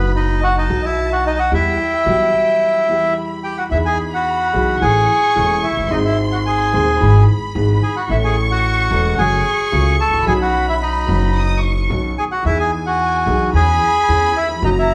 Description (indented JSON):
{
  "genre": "tango",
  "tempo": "110 BPM",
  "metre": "4/4",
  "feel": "rubato",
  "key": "E harmonic minor, E major from 3.7 s",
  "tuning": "A4 = 439 Hz",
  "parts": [
    { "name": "bandoneon", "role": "melody", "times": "0.0-14.9 s", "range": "B3 to A5", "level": "-19 LUFS", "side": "equal", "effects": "none" },
    { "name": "rich chamber violin section", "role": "second line", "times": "0.0-14.9 s", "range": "G5 to D#6", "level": "-28 LUFS", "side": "equal", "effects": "none" },
    { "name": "clear upright piano", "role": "accompaniment", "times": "0.0-14.9 s", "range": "D#1 to A4", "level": "-24 LUFS", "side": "equal", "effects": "none" },
    { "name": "upright bass", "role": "bass", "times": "0.0-14.9 s", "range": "E1 to E2", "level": "-21 LUFS", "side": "equal", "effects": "none" }
  ],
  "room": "wet large studio reverb, RT60 1.2 s",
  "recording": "band playing live in one room, vinyl crackle",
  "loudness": "-16 LUFS",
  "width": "mono",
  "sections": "0.0-3.7 A section; 3.7-14.9 B section",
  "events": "break 2.6-3.7",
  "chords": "0.0 B; 1.5 Em; 3.7 Emaj7; 4.8 Amaj7; 5.9 G#; 7.0 E/G#; 8.1 A; 9.2 F#madd9; 10.3 Badd9; 12.4 Emaj7; 13.5 C#m7/E"
}